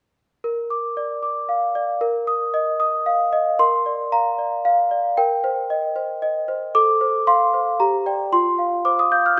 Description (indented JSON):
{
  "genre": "classical, lullaby for celesta",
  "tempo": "114 BPM",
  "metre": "3/4",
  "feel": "straight",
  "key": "Bb major",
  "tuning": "A4 = 440 Hz",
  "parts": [
    { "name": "celesta", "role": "solo", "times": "0.4-9.4 s", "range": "F4 to G6", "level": "-20 LUFS", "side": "equal", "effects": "none" }
  ],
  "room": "wet concert hall reverb, RT60 2.3 s",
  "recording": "recorded in a church or concert hall",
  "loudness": "-20 LUFS",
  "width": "mono",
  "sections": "0.4-3.6 A section; 3.6-9.4 B section",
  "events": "none",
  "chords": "0.4 Bb; 2.0 Bbsus4; 3.6 Bb; 5.2 Cm7/Bb; 6.7 F/A; 7.8 Gm; 8.3 F5",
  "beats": "| 0.44 0.96 1.49 | 2.01 2.54 3.06 | 3.60 4.12 4.65 | 5.17 5.70 6.22 | 6.74 7.27 7.79 | 8.32 8.85 9.37"
}